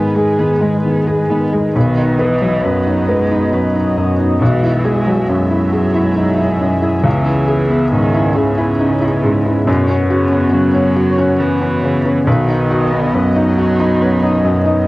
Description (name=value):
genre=neoclassical piano and strings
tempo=68 BPM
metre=3/4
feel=rubato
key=unclear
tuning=A4 = 440 Hz
part: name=warm cello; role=second line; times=0.0-14.9 s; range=B2 to B3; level=-19 LUFS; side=right 2 dB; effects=cassette tape
part: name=felt-muted upright piano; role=accompaniment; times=0.0-14.9 s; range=B1 to B4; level=-14 LUFS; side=left 1 dB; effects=cassette tape
part: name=warm analog pad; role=sustained chords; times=0.0-14.9 s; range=G#3 to E5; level=-22 LUFS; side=right 1 dB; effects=chorus, cassette tape
part: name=concert harp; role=arpeggios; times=0.0-14.9 s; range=B3 to B5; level=-23 LUFS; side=equal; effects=cassette tape, tape echo
room=moderate booth ambience, RT60 0.2 s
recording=home recording on cassette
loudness=-12 LUFS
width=side -19 dB against mid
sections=0.0-1.7 A section; 1.7-14.9 B section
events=none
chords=0.0 G#m; 1.7 B; 4.4 Eadd9/B; 7.1 C#m7; 9.7 F#sus4; 12.3 B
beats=0.84 | 1.75 2.64 3.53 | 4.41 5.29 6.17 | 7.05 7.93 8.80 | 9.67 10.53 11.40 | 12.27 13.14 14.00 | 14.86